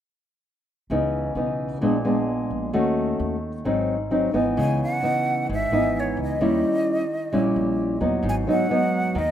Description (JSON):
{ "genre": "bossa nova", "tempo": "131 BPM", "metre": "4/4", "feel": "straight", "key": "C# minor", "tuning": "A4 = 440 Hz", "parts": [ { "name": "nylon-string guitar", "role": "accompaniment", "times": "0.9-9.3 s", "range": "G#2 to F#4", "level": "-22 LUFS", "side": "equal", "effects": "none" }, { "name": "upright bass", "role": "bass", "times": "0.9-9.3 s", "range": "G#1 to D#2", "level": "-30 LUFS", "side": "equal", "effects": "none" }, { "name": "breathy jazz flute", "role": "melody", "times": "4.6-9.3 s", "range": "C#5 to G#5", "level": "-26 LUFS", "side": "right 2 dB", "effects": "none" } ], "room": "light reverb", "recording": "rough home demo mix", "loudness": "-21 LUFS", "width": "side -10 dB against mid", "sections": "0.9-4.6 A section; 4.6-9.3 B section", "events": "none", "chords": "0.9 C#m9; 1.8 A#7b9; 2.7 D#m7b5; 3.7 G#7; 4.6 C#m9; 6.4 D#7b9; 8.2 G#m7" }